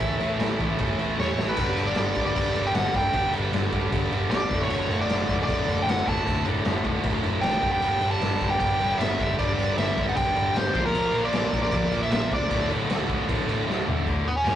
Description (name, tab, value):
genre	punk rock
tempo	154 BPM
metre	4/4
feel	straight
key	D major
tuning	A4 = 438 Hz
part	nasal lead guitar with a parked wah	melody	0.0-14.6 s	B3 to A5	-26 LUFS	equal	overdrive
part	crunchy overdriven guitar	riff	0.0-14.1 s	D2 to Bb3	-30 LUFS	right 3 dB	none
part	overdriven semi-hollow guitar	riff	0.0-14.6 s	D2 to Bb3	-32 LUFS	left 4 dB	none
part	scooped high-gain guitar	riff	0.0-14.6 s	D2 to Bb4	-31 LUFS	equal	distortion
part	overdriven picked electric bass	bass	0.0-14.6 s	D1 to G2	-32 LUFS	equal	none
part	raw garage drum kit	drums	0.0-14.6 s	crash cymbal, kick drum, snare drum, toms	-28 LUFS	equal	none
room	moderate booth ambience, RT60 0.2 s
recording	rough rehearsal-room recording, tube saturation, nothing above 10.8 kHz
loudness	-22 LUFS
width	side -11 dB against mid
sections	0.0-1.6 A section; 1.6-14.1 B section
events	drum fill 1.2-1.6, 13.7-14.1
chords	0.0 A; 1.6 G; 4.5 D/F#; 7.6 G; 10.8 Bb; 12.5 D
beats	| 0.01 0.40 0.79 1.19 | 1.58 1.97 2.36 2.75 | 3.14 3.53 3.92 4.31 | 4.70 5.09 5.48 5.87 | 6.26 6.65 7.04 7.43 | 7.82 8.21 8.60 8.99 | 9.38 9.77 10.16 10.55 | 10.95 11.34 11.73 12.12 | 12.51 12.90 13.29 13.68 | 14.07 14.46